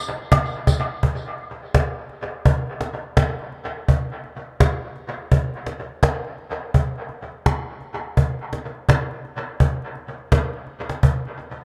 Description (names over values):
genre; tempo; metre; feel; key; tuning
reggae; 84 BPM; 4/4; swing 61% on 16ths; none; none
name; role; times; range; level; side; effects
cajon; drums; 0.2-11.6 s; none; -22 LUFS; equal; dub echo
woodblock and tambourine; percussion; 0.3-0.9 s; none; -32 LUFS; equal; dub echo
room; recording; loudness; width
little or no reverb; dark, warm production; -22 LUFS; mono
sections
0.0-1.0 A section; 1.0-11.6 B section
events
none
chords
none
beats
0.32 | 1.04 1.75 2.46 3.18 | 3.89 4.60 5.32 6.03 | 6.75 7.46 8.18 8.89 | 9.61 10.32 11.04